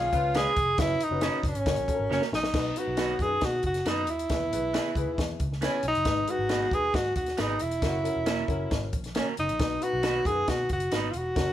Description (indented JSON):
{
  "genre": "uptempo 1960s-style soul",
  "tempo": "136 BPM",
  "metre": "4/4",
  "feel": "straight",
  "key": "B major",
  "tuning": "A4 = 439 Hz",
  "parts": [
    { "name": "warm tenor saxophone", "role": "melody", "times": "0.0-11.5 s", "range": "C#4 to G#4", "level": "-27 LUFS", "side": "equal", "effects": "none" },
    { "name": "warm horn section", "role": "second line", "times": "0.0-0.5, 7.8-8.1 s", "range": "C#3 to F#4", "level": "-39 LUFS", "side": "left 1 dB", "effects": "none" },
    { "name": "vintage muted picked electric bass", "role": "bass", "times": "0.0-11.5 s", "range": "E1 to B2", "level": "-34 LUFS", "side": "equal", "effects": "none" },
    { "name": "dark grand piano", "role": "accompaniment", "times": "0.1-11.5 s", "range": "G#2 to B4", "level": "-36 LUFS", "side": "left 5 dB", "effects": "none" },
    { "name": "compact cocktail drum kit", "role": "drums", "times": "0.1-11.5 s", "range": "crash cymbal, hi-hat, kick drum, snare drum", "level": "-31 LUFS", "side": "equal", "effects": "none" },
    { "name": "electric guitar through a small old amp", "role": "stabs", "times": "0.3-11.1 s", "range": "F#3 to B4", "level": "-34 LUFS", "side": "right 5 dB", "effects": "none" }
  ],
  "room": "light reverb",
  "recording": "band playing live in one room",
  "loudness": "-25 LUFS",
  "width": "side -12 dB against mid",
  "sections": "0.0-2.5 A section; 2.5-11.5 B section",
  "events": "drum fill 2.1-2.5; band accent 7.8-9.6",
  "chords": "0.0 C#7; 0.8 F#sus4; 1.7 F#; 2.5 B; 4.3 E; 6.1 G#m; 7.8 F#; 9.6 B"
}